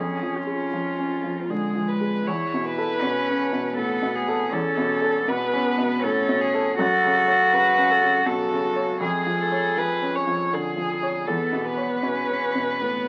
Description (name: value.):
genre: neoclassical piano and strings.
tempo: 80 BPM.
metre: 3/4.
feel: rubato.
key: unclear.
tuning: A4 = 440 Hz.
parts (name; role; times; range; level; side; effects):
warm cello; second line; 0.0-13.1 s; G#3 to A4; -26 LUFS; equal; none.
felt-muted upright piano; accompaniment; 0.0-13.1 s; E2 to C#5; -30 LUFS; equal; none.
rich viola; accompaniment; 0.0-13.1 s; E#4 to C#5; -28 LUFS; equal; none.
room: moderate studio ambience, RT60 0.5 s.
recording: very old 78 rpm record, vinyl crackle.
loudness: -23 LUFS.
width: mono.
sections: 0.0-13.1 A section.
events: none.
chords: 0.0 C#/E#; 2.3 Aadd9/E; 6.8 F#m; 9.0 C#/E#; 11.3 Aadd9/E.